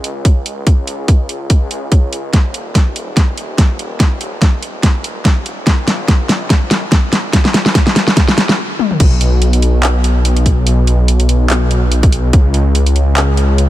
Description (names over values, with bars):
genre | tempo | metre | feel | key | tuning
future bass | 144 BPM | 4/4 | swing 55% on 16ths, half-time | unclear | A4 = 436 Hz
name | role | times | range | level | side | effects
wide detuned saw bass | bass | 0.0-13.7 s | Eb1 to Db2 | -15 LUFS | equal | chorus, sidechain pumping, high-pass filter
pop drum kit | drums | 0.0-13.7 s | crash cymbal, handclaps, hi-hat, snare drum, toms | -15 LUFS | equal | none
electronic kick drum | drums | 0.2-12.4 s | none | -11 LUFS | equal | overdrive
room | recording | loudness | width
digital ambience | none | -11 LUFS | side -14 dB against mid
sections
0.0-9.0 A section; 9.0-13.7 B section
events
build-up 0.0-9.0; drum fill 2.3-8.6, 8.8; stop 8.6-9.0; drop 9.0-13.7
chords
none